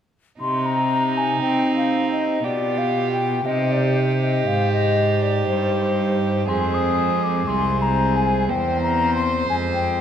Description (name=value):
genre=classical, baroque-style sonata movement with continuo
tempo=60 BPM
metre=3/4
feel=straight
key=C minor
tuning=A4 = 441 Hz
part: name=baroque flute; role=melody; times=0.4-10.0 s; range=C5 to Eb6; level=-23 LUFS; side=left 5 dB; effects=none
part: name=dark violin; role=second line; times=0.4-10.0 s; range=Eb4 to C5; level=-25 LUFS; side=right 5 dB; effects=none
part: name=pipe organ, foundations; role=accompaniment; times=0.4-10.0 s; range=C2 to C5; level=-25 LUFS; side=left 1 dB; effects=none
part: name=rich cello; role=bass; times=0.4-10.0 s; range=C2 to C4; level=-23 LUFS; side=right 1 dB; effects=none
room=wet recital hall reverb, RT60 1.4 s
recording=none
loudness=-18 LUFS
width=side -9 dB against mid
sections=0.4-10.0 A section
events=none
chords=0.4 Cm; 2.4 G7/B; 3.5 Cm; 6.5 Fm; 8.5 C7/E; 9.5 Fm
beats=| 0.41 1.44 2.45 | 3.46 4.47 5.48 | 6.49 7.49 8.49 | 9.49